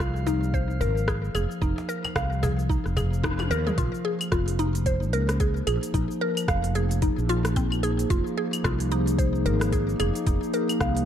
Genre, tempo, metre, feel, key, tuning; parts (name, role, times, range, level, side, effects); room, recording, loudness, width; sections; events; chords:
organic downtempo; 111 BPM; 4/4; swing 59% on 16ths; A4 = 440 Hz
warbly tape-like pad; sustained chords; 0.0-11.1 s; F3 to Ab4; -30 LUFS; equal; chorus, built-in reverb, sidechain pumping
mallet-like synth pluck; arpeggios; 0.0-11.1 s; C4 to F5; -29 LUFS; left 1 dB; chorus, phaser, ping-pong delay
mellow fretless electric bass; bass; 0.0-11.1 s; F1 to Eb2; -26 LUFS; equal; tube saturation, ensemble chorus
electronic kick drum; drums; 0.0-10.9 s; -27 LUFS; equal; overdrive
organic electronic drum kit; drums; 0.0-11.1 s; cabasa, claves, hi-hat, rim click, toms; -32 LUFS; left 1 dB; overdrive
drifting glass-harmonics texture; texture; 0.0-3.8 s; F5; -43 LUFS; right 2 dB; chorus, built-in reverb
cajon; percussion; 0.3-3.5 s; -32 LUFS; right 1 dB
light reverb, digital ambience; dark, warm production; -23 LUFS; side -9 dB against mid
0.0-3.8 A section; 3.8-11.1 B section
drum fill 3.2-3.8; band accent 3.2
0.0 Fm7; 3.8 Bb7(no3); 8.1 Fm7